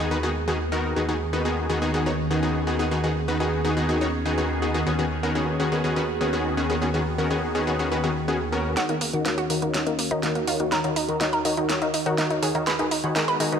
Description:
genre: progressive house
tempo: 123 BPM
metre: 4/4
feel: straight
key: Eb minor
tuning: A4 = 440 Hz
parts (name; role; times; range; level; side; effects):
- evolving wavetable pad; sustained chords; 0.0-13.6 s; Eb2 to Ab4; -30 LUFS; right 2 dB; phaser, built-in reverb
- supersaw stab; stabs; 0.0-13.6 s; Eb3 to F5; -24 LUFS; left 1 dB; cassette tape, low-pass filter, tape echo
- dark detuned saw bass; bass; 0.0-8.7 s; Eb2; -30 LUFS; right 1 dB; none
- analog pluck; arpeggios; 8.8-13.6 s; Bb3 to Cb5; -27 LUFS; right 2 dB; chorus, cassette tape, tape echo
- pop drum kit; drums; 8.8-13.6 s; hi-hat, snare drum; -28 LUFS; right 1 dB; high-pass filter on snare, high-pass filter on hats
room: moderate lush hall reverb, RT60 1.9 s, digital ambience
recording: none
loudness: -22 LUFS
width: side -7 dB against mid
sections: 0.0-8.8 A section; 8.8-13.6 B section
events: filter sweep on ambient pad 0.0-8.8, 8.8-13.6; build-up 8.8-13.6; drum fill 8.8-13.6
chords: 0.0 Abm7/Eb; 1.0 B6/D#; 4.9 Db7sus4/Eb; 8.8 Ebm7; 12.7 Abm7/Eb

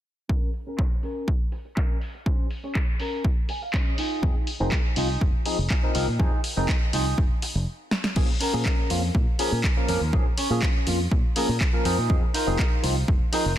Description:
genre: filtered disco house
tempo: 122 BPM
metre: 4/4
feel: straight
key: Bb minor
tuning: A4 = 441 Hz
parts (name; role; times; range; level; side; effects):
- clean electric guitar; riff; 0.3-13.5 s; Db4 to Ab5; -32 LUFS; right 1 dB; vintage 12-bit sampler grit, sidechain pumping, low-pass filter
- electronic kick drum; drums; 0.3-13.2 s; none; -23 LUFS; equal; none
- punchy analog drum machine; drums; 0.5-13.4 s; crash cymbal, handclaps, hi-hat, snare drum; -30 LUFS; equal; sidechain pumping on hats, low-pass filter on hats, low-pass filter on snare, sidechain pumping on cymbals, low-pass filter on cymbals
- barky tine electric piano; accompaniment; 4.2-13.4 s; F3 to Bb4; -29 LUFS; equal; phaser, sidechain pumping, low-pass filter
- fingered electric bass; bass; 4.2-13.5 s; F1 to Bb2; -26 LUFS; equal; sidechain pumping, low-pass filter
room: little or no reverb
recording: dense, heavily limited modern master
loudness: -22 LUFS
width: side -12 dB against mid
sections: 0.3-8.2 A section; 8.2-13.6 B section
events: filter sweep 0.3-8.2, 8.2-13.6; clean electric guitar fill 3.2-4.2; stop 7.7-8.2; drum fill 7.9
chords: 0.3 Bbm7; 4.0 Fm7; 8.2 Bbm7; 11.9 Fm7

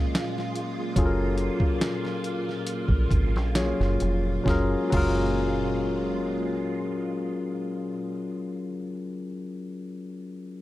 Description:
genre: R&B, neo-soul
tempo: 65-74 BPM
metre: 4/4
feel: swing 54% on 16ths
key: F# major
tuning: A4 = 440 Hz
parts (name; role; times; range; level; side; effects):
- barky tine electric piano; accompaniment; 0.0-10.6 s; F#3 to C#5; -28 LUFS; left 2 dB; plate reverb
- soft string machine; sustained chords; 0.0-8.2 s; A#2 to E#4; -33 LUFS; right 2 dB; phaser, ensemble chorus
- boom bap sampler-style drum kit; drums; 0.1-5.2 s; crash cymbal, hi-hat, kick drum, snare drum; -26 LUFS; right 1 dB; none
- deep dub fingered electric bass; bass; 1.0-8.7 s; E#1 to A#1; -27 LUFS; right 1 dB; none
room: light reverb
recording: dark, warm production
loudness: -24 LUFS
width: side -16 dB against mid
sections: 0.0-4.5 A section; 4.5-8.2 B section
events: slowing down 0.0-4.5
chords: 0.0 F#maj9

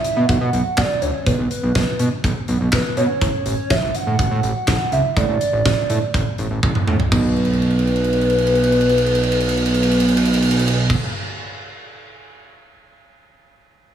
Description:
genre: synth-pop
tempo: 123 BPM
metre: 4/4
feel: straight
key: B minor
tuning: A4 = 439 Hz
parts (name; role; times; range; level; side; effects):
- hollow clarinet-like synth lead; melody; 0.0-11.0 s; B4 to F#5; -21 LUFS; equal; chorus, tape echo
- huge arena drum kit; drums; 0.0-12.5 s; crash cymbal, handclaps, hi-hat, kick drum, ride cymbal, snare drum, toms; -21 LUFS; right 1 dB; none
- fat analog bass; bass; 0.2-11.0 s; A1 to B2; -18 LUFS; right 1 dB; none
room: light reverb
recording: small room ambience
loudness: -16 LUFS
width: side -9 dB against mid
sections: 0.0-7.1 A section; 7.1-11.0 B section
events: drum fill 6.6-7.1, 7.4-10.9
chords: 0.0 B5; 3.2 F#m/A; 5.2 Asus4; 7.1 N.C.

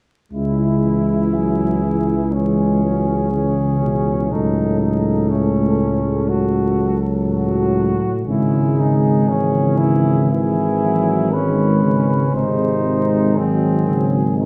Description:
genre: classical, hymn-like piece for brass band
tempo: 60 BPM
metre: 4/4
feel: rubato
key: C# minor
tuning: A4 = 440 Hz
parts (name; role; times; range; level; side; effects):
- dark cornet; melody; 0.3-14.5 s; D#4 to B#4; -28 LUFS; equal; none
- warm flugelhorn; second line; 0.3-14.5 s; B#3 to F#4; -26 LUFS; equal; none
- bright trombone section; accompaniment; 0.3-14.5 s; E3 to A3; -26 LUFS; equal; none
- mellow trombone; accompaniment; 0.3-14.5 s; A2 to E3; -24 LUFS; equal; none
- mellow tuba; bass; 0.3-14.5 s; G#1 to C#2; -21 LUFS; equal; none
room: wet scoring stage reverb, RT60 1.8 s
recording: vinyl crackle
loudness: -18 LUFS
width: mono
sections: 0.3-14.5 A section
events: none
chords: 0.3 C#m; 4.3 D#m7b5/C#; 8.3 C#m/G#; 12.3 G#7

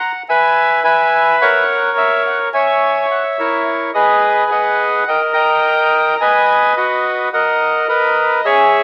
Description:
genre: tango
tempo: 107 BPM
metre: 4/4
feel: rubato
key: B major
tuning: A4 = 440 Hz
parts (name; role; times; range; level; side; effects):
- bandoneon; solo; 0.0-8.8 s; E4 to A#5; -14 LUFS; equal; none
room: wet studio reverb, RT60 0.9 s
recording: very old 78 rpm record, vinyl crackle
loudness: -14 LUFS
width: mono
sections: 0.0-8.8 A section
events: none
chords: 0.0 G#m7b13; 0.5 C#m7; 1.7 F#9; 3.9 G#m7; 5.1 D#; 6.2 G#m7; 7.3 Bmaj7

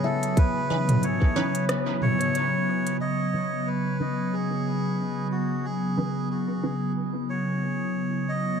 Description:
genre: ambient dub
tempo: 91 BPM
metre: 4/4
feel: swing 57% on 16ths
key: C# minor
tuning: A4 = 439 Hz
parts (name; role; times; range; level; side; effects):
- melodica; melody; 0.0-8.6 s; F#4 to D#5; -30 LUFS; right 2 dB; dub echo
- airy breathy pad; sustained chords; 0.0-8.6 s; C#3 to G#5; -26 LUFS; equal; chorus
- kalimba; arpeggios; 0.0-2.8 s; C#5 to G#5; -35 LUFS; left 4 dB; dub echo
- organic electronic drum kit; drums; 0.2-3.0 s; hi-hat, rim click, toms; -28 LUFS; equal; none
- electronic kick drum; drums; 0.4-1.3 s; none; -21 LUFS; equal; none
- filtered dub chord stab; stabs; 0.7-6.8 s; E3 to B4; -33 LUFS; right 2 dB; phaser, ensemble chorus, dub echo
room: light reverb, digital ambience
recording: dark, warm production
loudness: -23 LUFS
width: side -7 dB against mid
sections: 0.0-3.0 A section; 3.0-8.6 B section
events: kick drops out 1.7-3.0; filter sweep on analog synth pad 3.0-8.6; filter sweep on synth stab 3.0-8.6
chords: 0.0 C#m9

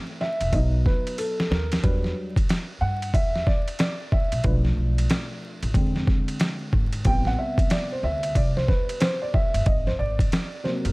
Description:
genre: hip hop, jazz-hop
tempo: 92 BPM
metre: 4/4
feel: swing 64% on 16ths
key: unclear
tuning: A4 = 440 Hz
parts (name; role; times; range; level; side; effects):
- dark grand piano; accompaniment; 0.0-10.9 s; C3 to G5; -28 LUFS; right 1 dB; none
- boom bap sampler-style drum kit; drums; 0.2-10.9 s; hi-hat, kick drum, ride cymbal, snare drum; -24 LUFS; equal; overdrive
- upright bass; bass; 0.4-10.9 s; E1 to G2; -26 LUFS; equal; none
room: light reverb, small room ambience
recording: dark, warm production, vinyl crackle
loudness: -21 LUFS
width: side -25 dB against mid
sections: 0.0-10.9 A section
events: grand piano solo 0.0-10.9; drum fill 1.2-1.8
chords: 0.0 F#m7b5 (rootless); 0.5 B; 1.8 Em7; 4.4 Bm7b5; 5.8 E7b13; 7.1 Am9 (rootless); 9.7 Ab9

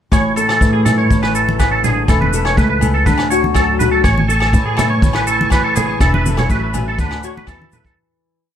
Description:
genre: highlife guitar band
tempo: 122 BPM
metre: 4/4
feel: straight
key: A major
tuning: A4 = 440 Hz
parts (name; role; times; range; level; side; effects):
- nylon-string guitar; accompaniment; 0.1-8.6 s; A2 to A4; -20 LUFS; left 4 dB; none
- twangy electric guitar; arpeggios; 0.1-8.0 s; G#4 to C#5; -18 LUFS; right 3 dB; ensemble chorus, slapback echo
- upright bass; bass; 0.1-7.9 s; E1 to A2; -18 LUFS; equal; none
- vintage brush drum kit; drums; 0.1-8.0 s; hi-hat, kick drum, rim click; -18 LUFS; equal; none
- agogo bells; percussion; 0.1-7.6 s; none; -26 LUFS; left 6 dB; none
- maracas; percussion; 0.1-7.9 s; none; -30 LUFS; left 7 dB; none
- congas; percussion; 0.9-7.8 s; none; -21 LUFS; right 1 dB; none
- bright tonewheel organ; sustained chords; 4.0-8.0 s; D5 to C#6; -29 LUFS; left 1 dB; overdrive, fast rotary speaker
room: light reverb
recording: none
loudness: -12 LUFS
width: side -9 dB against mid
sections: 0.1-8.0 groove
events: fade-out 6.0-8.0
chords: 0.1 Amaj7; 2.1 Esus4; 3.1 D6; 4.0 Amaj7; 6.0 Esus4; 7.0 D6; 7.5 Esus4

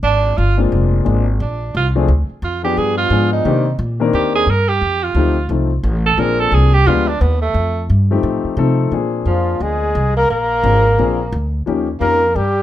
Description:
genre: jazz, small-group swing and bop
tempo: 175 BPM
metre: 4/4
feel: swing 62% on 8ths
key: Bb mixolydian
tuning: A4 = 441 Hz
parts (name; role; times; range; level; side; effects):
- mellow tenor saxophone; second line; 0.0-12.6 s; F3 to Bb4; -18 LUFS; right 5 dB; none
- upright bass; bass; 0.0-12.6 s; F1 to C3; -17 LUFS; equal; none
- warm grand piano; accompaniment; 0.6-12.2 s; Eb3 to Bb4; -19 LUFS; left 6 dB; none
- warm flugelhorn; melody; 9.3-12.6 s; F4 to Bb4; -16 LUFS; left 1 dB; none
room: light reverb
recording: minimal, uncompressed stereo recording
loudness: -13 LUFS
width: side -12 dB against mid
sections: 0.0-8.9 A section; 8.9-12.6 B section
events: tenor saxophone solo 0.0-8.9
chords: 0.0 Bb7; 2.1 Dm; 2.8 G7b9; 3.5 Cm7; 4.8 F7; 6.2 Bb7; 6.9 G7b9; 7.6 F7; 8.9 Bb7; 11.7 Eb7

